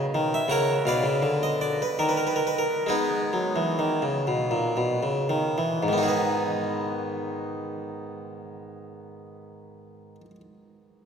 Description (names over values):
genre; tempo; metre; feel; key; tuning
classical, baroque-style suite movement for harpsichord; 55-85 BPM; 3/4; rubato; G# minor; A4 = 440 Hz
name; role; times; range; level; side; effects
harpsichord; solo; 0.0-10.4 s; G#2 to G#5; -24 LUFS; equal; none
room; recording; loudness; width
wet cathedral reverb, RT60 4.7 s; in a vast, echoing space; -23 LUFS; side -7 dB against mid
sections
0.0-5.8 A section; 5.8-11.1 B section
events
slowing down 0.0-5.8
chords
0.5 A#m/C#; 1.2 Dm6; 2.0 N.C.; 2.9 G#m